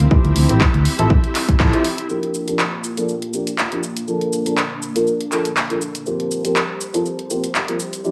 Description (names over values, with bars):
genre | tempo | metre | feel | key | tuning
filtered disco house | 121 BPM | 4/4 | swing 55% on 16ths | unclear | A4 = 437 Hz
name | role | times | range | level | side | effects
string machine, full ensemble | sustained chords | 0.0-8.1 s | Bb3 to Bb5 | -30 LUFS | equal | ensemble chorus, sidechain pumping, low-pass filter
fingered electric bass | bass | 0.0-1.7 s | A1 to D2 | -18 LUFS | equal | sidechain pumping, low-pass filter
house drum kit | drums | 0.0-8.1 s | handclaps, hi-hat, shaker | -25 LUFS | equal | overdrive, sidechain pumping on hats, sidechain pumping on perc
clear baby grand piano | accompaniment | 0.1-8.1 s | F3 to Bb4 | -24 LUFS | equal | phaser, sidechain pumping, low-pass filter
electronic kick drum | drums | 0.1-1.7 s | none | -18 LUFS | equal | overdrive
room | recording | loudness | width
moderate digital room reverb, RT60 1.2 s | none | -19 LUFS | mono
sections
0.0-2.1 A section; 2.1-8.1 B section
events
band accent 1.6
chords
0.0 Dm11; 2.1 Gm7; 3.8 Bbmaj7; 6.1 C7sus4